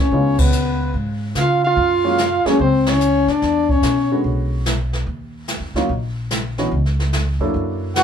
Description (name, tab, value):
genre	jazz, small-group swing and bop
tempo	146 BPM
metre	4/4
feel	swing 66% on 8ths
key	unclear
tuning	A4 = 443 Hz
part	mellow trombone	melody	0.0-4.3, 8.0 s	Cb4 to Gb4	-17 LUFS	left 2 dB	none
part	mellow trumpet	second line	0.0-4.2, 8.0 s	Cb5 to Gb5	-24 LUFS	right 1 dB	none
part	upright bass	bass	0.0-8.0 s	Bb1 to Db3	-22 LUFS	equal	none
part	dark baby grand piano	accompaniment	0.1-7.9 s	D3 to A4	-23 LUFS	right 2 dB	none
part	jazz brush drum kit	drums	0.1-8.0 s	brushed snare drum, crash cymbal, hi-hat, kick drum, ride cymbal, snare drum	-23 LUFS	equal	none
room	moderate small room reverb, RT60 0.5 s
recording	band playing live in one room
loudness	-16 LUFS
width	side -8 dB against mid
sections	0.0-8.0 A section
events	band accent 0.3, 2.8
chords	0.1 Db9; 1.8 Gbmaj9; 3.4 E13; 5.1 Ebm9; 6.7 Dbm